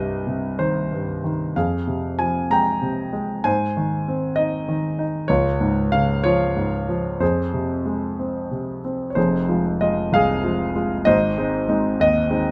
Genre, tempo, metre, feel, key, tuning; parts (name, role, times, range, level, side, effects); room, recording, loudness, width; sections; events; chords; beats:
classical, lyrical solo piano; 63 BPM (dotted quarters); 6/8; rubato; F minor; A4 = 440 Hz
warm concert grand piano; solo; 0.0-12.5 s; F1 to Bb5; -22 LUFS; equal
light reverb; close, detailed microphones; -22 LUFS; mono
0.0-9.2 A section; 9.2-12.5 A section
0.0 Cm; 1.6 Fmadd9; 3.4 Ab; 5.3 Db; 7.2 Fm; 11.1 Ab
0.58 | 1.56 2.50 | 3.45 4.37 | 5.29 6.25 | 7.22 8.19 | 9.17 10.13 | 11.06 12.00